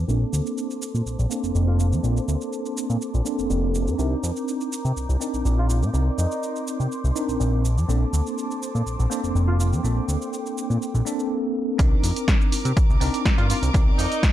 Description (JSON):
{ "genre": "filtered disco house", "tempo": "123 BPM", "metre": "4/4", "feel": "straight", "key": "C dorian", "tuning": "A4 = 440 Hz", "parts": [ { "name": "warm symphonic violin section", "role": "sustained chords", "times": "0.0-14.3 s", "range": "Bb4 to G6", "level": "-36 LUFS", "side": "right 1 dB", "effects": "vintage 12-bit sampler grit, sidechain pumping, low-pass filter" }, { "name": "fat analog bass", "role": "bass", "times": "0.0-14.1 s", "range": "F1 to C3", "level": "-22 LUFS", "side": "equal", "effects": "sidechain pumping, low-pass filter" }, { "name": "bell-like tine electric piano", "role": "accompaniment", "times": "0.1-14.3 s", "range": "Bb3 to D5", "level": "-27 LUFS", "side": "right 1 dB", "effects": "fast stereo tremolo, phaser, sidechain pumping, low-pass filter" }, { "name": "punchy analog drum machine", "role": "drums", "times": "0.1-14.3 s", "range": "hi-hat, shaker, snare drum", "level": "-31 LUFS", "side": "right 1 dB", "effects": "overdrive" }, { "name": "warm horn section", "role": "melody", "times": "1.7-1.9, 5.6-9.7, 13.4-14.3 s", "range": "Eb4 to F4", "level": "-32 LUFS", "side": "equal", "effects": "sidechain pumping, low-pass filter" }, { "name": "electronic kick drum", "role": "drums", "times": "11.8-14.3 s", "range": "none", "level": "-19 LUFS", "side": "equal", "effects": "overdrive" } ], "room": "light reverb, digital ambience", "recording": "dark, warm production", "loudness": "-21 LUFS", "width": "side -12 dB against mid", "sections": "0.0-11.8 A section; 11.8-14.3 B section", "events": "filter sweep 0.0-11.8; drop 11.8-14.3", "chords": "0.0 Bbmaj9; 4.0 Cm9; 7.6 Bbmaj9; 11.8 Cm9", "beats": "| 0.09 0.57 1.06 1.55 | 2.04 2.52 3.01 3.50 | 3.99 4.47 4.96 5.45 | 5.94 6.43 6.91 7.40 | 7.89 8.38 8.87 9.35 | 9.84 10.33 10.82 11.30 | 11.79 12.28 12.77 13.26 | 13.74 14.23" }